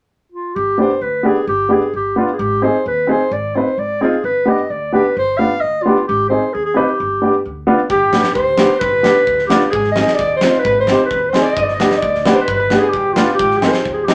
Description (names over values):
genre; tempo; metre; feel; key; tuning
klezmer; 131 BPM; 2/4; straight; G phrygian dominant; A4 = 442 Hz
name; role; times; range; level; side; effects
mellow clarinet; melody; 0.3-14.1 s; F4 to F5; -19 LUFS; equal; none
upright bass; bass; 0.6-14.1 s; G1 to Eb2; -30 LUFS; equal; none
warm upright piano; accompaniment; 0.8-14.1 s; B3 to B4; -18 LUFS; equal; none
concert harp; second line; 7.9-14.1 s; F4 to Eb5; -24 LUFS; equal; none
huge arena drum kit; drums; 7.9-14.1 s; kick drum, snare drum; -25 LUFS; equal; none
room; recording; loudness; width
wet studio ambience, RT60 0.5 s; none; -15 LUFS; mono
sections
0.6-7.9 A section; 7.9-14.1 A section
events
none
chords
0.0 N.C.; 0.6 G; 2.4 Ab; 4.2 G; 6.1 Ab; 7.0 G; 9.7 Ab; 11.6 G; 13.4 Ab